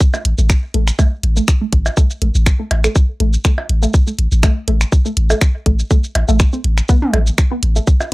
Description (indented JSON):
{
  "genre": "minimal techno",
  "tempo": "122 BPM",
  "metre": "4/4",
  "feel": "swing 54% on 16ths",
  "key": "unclear",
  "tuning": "A4 = 440 Hz",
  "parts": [
    { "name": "electronic kick drum", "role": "drums", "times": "0.0-8.0 s", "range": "none", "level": "-12 LUFS", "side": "equal", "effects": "none" },
    { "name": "garage drum kit", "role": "drums", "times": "0.0-8.1 s", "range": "finger snaps, hi-hat, shaker", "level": "-22 LUFS", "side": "equal", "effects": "none" },
    { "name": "resonant blip pluck", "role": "riff", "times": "0.1-7.8 s", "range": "A3 to C4", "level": "-22 LUFS", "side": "right 1 dB", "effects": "phaser, lush chorus, sidechain pumping, analog delay" },
    { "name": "electronic claves, percussion blips and toms", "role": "percussion", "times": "0.1-8.1 s", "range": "none", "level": "-22 LUFS", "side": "right 1 dB", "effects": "none" },
    { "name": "punchy sub bass", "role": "bass", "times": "0.3-7.8 s", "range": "A1", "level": "-14 LUFS", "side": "equal", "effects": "sidechain pumping" }
  ],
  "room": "little or no reverb",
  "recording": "dry, gritty hardware recording",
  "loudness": "-13 LUFS",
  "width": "side -21 dB against mid",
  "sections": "0.0-8.1 A section",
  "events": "filter sweep on synth arpeggio sound 0.0-8.1",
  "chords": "none",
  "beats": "0.01 0.50 | 0.99 1.48 1.97 2.46 | 2.96 3.45 3.94 4.43 | 4.92 5.42 5.91 6.40 | 6.89 7.38 7.87"
}